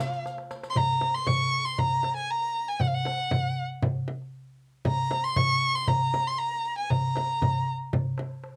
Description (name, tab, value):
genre	Arabic maqam ensemble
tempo	117 BPM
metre	4/4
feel	straight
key	F maqam kurd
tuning	A4 = 440 Hz
part	warm violin	melody	0.0-7.7 s	F5 to Db6	-29 LUFS	equal	none
part	frame drum	percussion	0.0-8.3 s	none	-35 LUFS	equal	none
part	riq	percussion	0.0-0.7 s	none	-48 LUFS	equal	none
part	darbuka	percussion	0.3-8.6 s	none	-32 LUFS	equal	none
room	moderate booth ambience, RT60 0.2 s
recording	home recording on cassette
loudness	-27 LUFS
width	mono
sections	0.8-8.6 A section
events	drum fill 0.3-0.8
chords	none